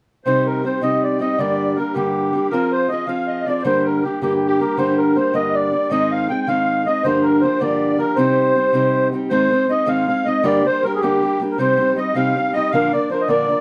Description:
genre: celtic folk.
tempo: 106 BPM (dotted quarters).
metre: 6/8.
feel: straight.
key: C minor.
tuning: A4 = 440 Hz.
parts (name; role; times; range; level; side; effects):
musette accordion; second line; 0.2-13.6 s; G4 to G5; -29 LUFS; equal; none.
mellow accordion; melody; 0.3-13.6 s; G4 to G5; -22 LUFS; equal; none.
fingerpicked acoustic archtop guitar; accompaniment; 0.3-13.6 s; G2 to Bb4; -22 LUFS; equal; none.
room: moderate studio reverb, RT60 0.5 s.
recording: none.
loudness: -18 LUFS.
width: mono.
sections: 0.3-9.3 A section; 9.3-13.6 B section.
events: none.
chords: 0.3 Cm; 1.4 Gm; 2.5 Fm; 3.6 Gm; 5.9 Ab; 7.0 Gm7; 8.2 Cm; 9.3 Ab; 10.4 Gm; 11.6 Cm; 12.7 Bb.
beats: | 0.25 0.82 | 1.38 1.95 | 2.51 3.08 | 3.64 4.21 | 4.78 5.34 | 5.91 6.47 | 7.04 7.61 | 8.18 8.74 | 9.31 9.88 | 10.45 11.01 | 11.58 12.15 | 12.72 13.29.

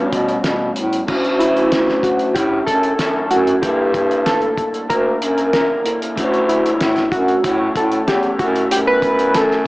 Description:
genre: indie pop, bedroom pop.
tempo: 94 BPM.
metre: 4/4.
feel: straight.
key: D major.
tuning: A4 = 440 Hz.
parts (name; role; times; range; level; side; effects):
electric guitar through a small old amp; accompaniment; 0.0-9.7 s; F#2 to F#4; -23 LUFS; left 2 dB; analog chorus, vibrato effect.
reed electric piano; accompaniment; 0.0-9.7 s; G3 to A4; -28 LUFS; right 2 dB; none.
warm bass clarinet; bass; 0.0-9.7 s; D2 to B2; -18 LUFS; equal; none.
cloth-damped thuddy drum kit; drums; 0.1-9.6 s; crash cymbal, hi-hat, kick drum, snare drum; -24 LUFS; equal; none.
warbly lo-fi synth keys; melody; 1.4-9.6 s; E4 to B4; -18 LUFS; equal; wide subtle chorus, tape echo.
room: light reverb, small room ambience.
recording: small speaker sound.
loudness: -14 LUFS.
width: side -20 dB against mid.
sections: 0.0-1.1 A section; 1.1-9.7 B section.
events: none.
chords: 0.0 A13; 1.1 Dmaj9; 3.6 Gm6; 6.2 Dmaj9; 8.4 F#m7.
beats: 0.45 | 1.09 1.72 2.36 2.99 | 3.63 4.27 4.90 5.54 | 6.17 6.81 7.44 8.08 | 8.71 9.35.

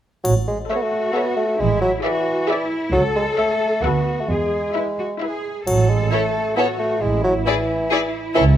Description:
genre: cinematic, playful, whimsical film cue.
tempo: 134 BPM.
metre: 3/4.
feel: straight.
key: A major.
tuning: A4 = 437 Hz.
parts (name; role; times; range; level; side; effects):
warm bassoon; accompaniment; 0.2-8.5 s; E3 to B3; -21 LUFS; equal; none.
warm studio double bass section; bass; 0.2-8.6 s; A1 to E2; -21 LUFS; right 2 dB; none.
triangle; percussion; 0.2-1.1, 5.7-6.5 s; none; -33 LUFS; left 6 dB; none.
rich studio violin section; melody; 0.7-8.4 s; C#5 to F#5; -27 LUFS; left 4 dB; none.
rich studio violin section; second line; 0.7-8.4 s; G#4 to D5; -28 LUFS; left 4 dB; none.
rich studio viola section; accompaniment; 0.7-8.4 s; E4 to A4; -27 LUFS; equal; none.
rich studio cello section; bass; 0.7-8.6 s; E4 to A4; -26 LUFS; equal; none.
room: light reverb.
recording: close, detailed microphones.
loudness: -18 LUFS.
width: side -11 dB against mid.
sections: 0.2-8.6 A section.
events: none.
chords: 0.2 A; 1.6 E7/A; 2.9 A/C#; 3.8 Bm7/D; 4.3 E; 5.7 N.C.; 7.0 E/A.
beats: | 0.25 0.70 1.16 | 1.60 2.04 2.49 | 2.93 3.38 3.83 | 4.29 4.75 5.21 | 5.67 6.12 6.57 | 7.02 7.46 7.90 | 8.35.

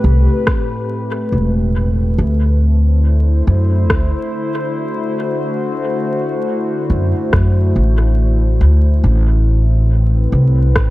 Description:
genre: ambient dub.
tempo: 70 BPM.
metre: 4/4.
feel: swing 57% on 16ths.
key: unclear.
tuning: A4 = 439 Hz.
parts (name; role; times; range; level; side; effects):
warbly tape-like pad; sustained chords; 0.0-10.9 s; A2 to C5; -19 LUFS; left 1 dB; chorus, built-in reverb.
upright bass; bass; 0.0-10.9 s; E1 to F#2; -12 LUFS; equal; tube saturation.
electronic kick drum; drums; 0.5-10.9 s; none; -17 LUFS; equal; none.
electronic rim click; drums; 0.5-10.9 s; none; -20 LUFS; equal; overdrive, dub echo.
room: digital ambience.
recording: echo-heavy mix, vinyl crackle.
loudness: -13 LUFS.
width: side -18 dB against mid.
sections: 0.0-10.9 A section.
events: none.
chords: 0.0 Am7; 2.2 D7; 9.0 Am.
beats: 0.47 1.33 | 2.19 3.04 3.90 4.76 | 5.61 6.47 7.33 8.19 | 9.04 9.90 10.76.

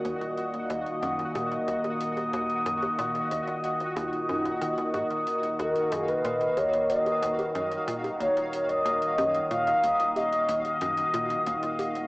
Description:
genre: ambient, sequencer-driven space music.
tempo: 92 BPM.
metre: 4/4.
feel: straight.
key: Eb minor.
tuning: A4 = 442 Hz.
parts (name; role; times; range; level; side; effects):
evolving wavetable pad; sustained chords; 0.0-12.1 s; Bb2 to Eb5; -28 LUFS; equal; phaser, built-in reverb, cassette tape.
tight sequencer bass; riff; 0.0-11.6 s; Eb2 to Eb3; -38 LUFS; equal; analog chorus, cassette tape, analog delay.
warm sub bass; bass; 0.0-12.1 s; Eb1; -51 LUFS; equal; none.
pulsing gated texture; texture; 0.0-12.1 s; Gb4 to Gb5; -36 LUFS; equal; chorus, built-in reverb, cassette tape.
electronic hi-hat and bongos; percussion; 0.1-12.1 s; none; -39 LUFS; equal; cassette tape, analog delay.
expressive portamento lead; melody; 5.6-10.6 s; Bb4 to F5; -27 LUFS; equal; lush chorus, cassette tape, analog delay.
room: wet spring reverb, RT60 2.3 s.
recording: home recording on cassette, small speaker sound.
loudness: -25 LUFS.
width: side -24 dB against mid.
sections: 0.0-12.1 A section.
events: fade-in on drum 0.0-12.1.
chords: 0.0 Ebm.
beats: | 0.38 1.03 1.68 2.33 | 2.99 3.64 4.29 4.94 | 5.59 6.25 6.90 7.55 | 8.20 8.86 9.51 10.16 | 10.81 11.46.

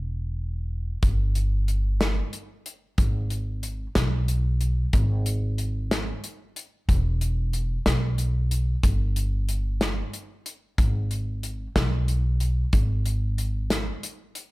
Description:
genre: indie folk with a building arrangement.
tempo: 62 BPM (dotted quarters).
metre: 6/8.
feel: straight.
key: unclear.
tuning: A4 = 439 Hz.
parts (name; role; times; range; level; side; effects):
upright bass; bass; 0.0-13.9 s; E1 to B1; -24 LUFS; equal; none.
natural country drum kit; drums; 1.0-14.5 s; hi-hat, kick drum, snare drum; -25 LUFS; equal; none.
room: little or no reverb.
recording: none.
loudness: -23 LUFS.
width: side -20 dB against mid.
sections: 0.0-1.0 A section; 1.0-14.5 A section.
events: none.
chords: none.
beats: 0.04 | 1.02 2.00 | 2.98 3.95 | 4.93 5.91 | 6.88 7.86 | 8.83 9.81 | 10.78 11.76 | 12.73 13.70.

